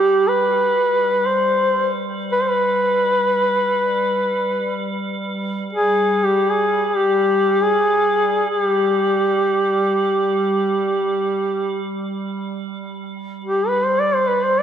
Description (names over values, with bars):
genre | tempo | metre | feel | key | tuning
caucasian folk, Caucasian lament | free time | none | none | G major | A4 = 440 Hz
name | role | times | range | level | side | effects
warm duduk | melody | 0.0-14.6 s | G4 to D5 | -17 LUFS | equal | none
icy glass pad | drone | 0.0-14.6 s | G3 | -26 LUFS | right 1 dB | chorus, built-in reverb
room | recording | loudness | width
moderate church reverb, RT60 3.6 s | none | -16 LUFS | side -9 dB against mid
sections
0.0-12.7 A section; 12.7-14.6 A section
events
none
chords
none